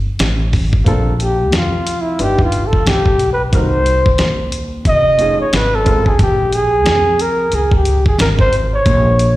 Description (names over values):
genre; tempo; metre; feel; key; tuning
hip hop, jazz-hop; 90 BPM; 4/4; swing 59% on 16ths; Bb dorian; A4 = 437 Hz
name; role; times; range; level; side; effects
upright bass; bass; 0.0-9.4 s; F1 to F2; -17 LUFS; equal; none
dusty soul sampler-style drum kit; drums; 0.2-9.4 s; hi-hat, kick drum, snare drum; -15 LUFS; equal; none
dark upright piano; accompaniment; 0.8-6.1 s; G#3 to Bb4; -23 LUFS; equal; slapback echo
breathy flugelhorn; melody; 1.2-9.4 s; E4 to Eb5; -15 LUFS; equal; slapback echo
room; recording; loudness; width
small room ambience; live gig heard through the venue's PA, recital hall reverb; -12 LUFS; side -16 dB against mid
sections
0.0-9.4 A section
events
flugelhorn solo 0.0-9.4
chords
0.0 N.C.; 0.9 Bbmaj9; 2.2 G7b13; 3.5 Cm7b5; 4.9 F7alt; 6.2 Bbm7